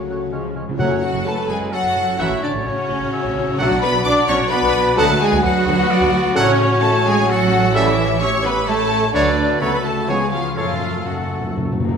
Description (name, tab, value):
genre	classical, dramatic, fast romantic movement for symphony orchestra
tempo	129 BPM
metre	3/4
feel	straight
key	F# minor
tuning	A4 = 439 Hz
part	warm symphonic violin section	melody	0.0-11.5 s	C#5 to D6	-24 LUFS	left 4 dB	none
part	warm symphonic violin section	second line	0.0-11.5 s	C#4 to D5	-27 LUFS	left 4 dB	none
part	mellow French horn section	sustained chords	0.0-10.7 s	G#3 to A4	-28 LUFS	left 4 dB	none
part	warm trombone section	sustained chords	0.0-10.7 s	C#3 to B3	-30 LUFS	right 4 dB	none
part	concert harp	arpeggios	0.0-12.0 s	F#2 to C#6	-27 LUFS	left 7 dB	none
part	rich symphonic double bass section	bass	0.0-11.8 s	F#1 to F#2	-25 LUFS	right 5 dB	none
part	warm symphonic cello section	bass	0.0-11.5 s	C#3 to D4	-24 LUFS	right 4 dB	none
part	timpani	percussion	0.0-1.5, 10.6-12.0 s	F#2 to C#3	-26 LUFS	equal	none
part	clear oboe	second line	0.1-11.8 s	A4 to F#5	-26 LUFS	right 1 dB	none
part	dark clarinet	second line	0.1-11.8 s	C#4 to A4	-27 LUFS	left 3 dB	none
part	silver concert flute	second line	0.1-11.5 s	C#5 to F#6	-25 LUFS	left 2 dB	none
part	warm bassoon	accompaniment	0.1-11.8 s	F#3 to D4	-28 LUFS	right 3 dB	none
part	warm symphonic viola section	accompaniment	0.1-11.5 s	E#3 to D5	-25 LUFS	right 3 dB	none
part	clear trumpet	stabs	0.8-10.7 s	C#5 to F#5	-26 LUFS	right 2 dB	none
room	wet scoring stage reverb, RT60 1.9 s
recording	minimal, uncompressed stereo recording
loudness	-15 LUFS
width	side -6 dB against mid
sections	0.8-12.0 A section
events	timpani fill 0.3-0.8, 10.6-12.0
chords	0.3 C#; 0.8 F#m; 2.2 F#m/A; 3.6 Bm7; 5.0 Bm/D; 6.4 F#m/A; 7.8 A7; 9.1 Dmaj7; 9.6 F#m/C#; 10.1 C#7; 10.6 F#m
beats	0.33 | 0.79 1.26 1.73 | 2.19 2.66 3.12 | 3.59 4.05 4.51 | 4.97 5.43 5.90 | 6.36 6.83 7.29 | 7.75 8.22 8.68 | 9.15 9.62 10.09 | 10.57 11.06 11.54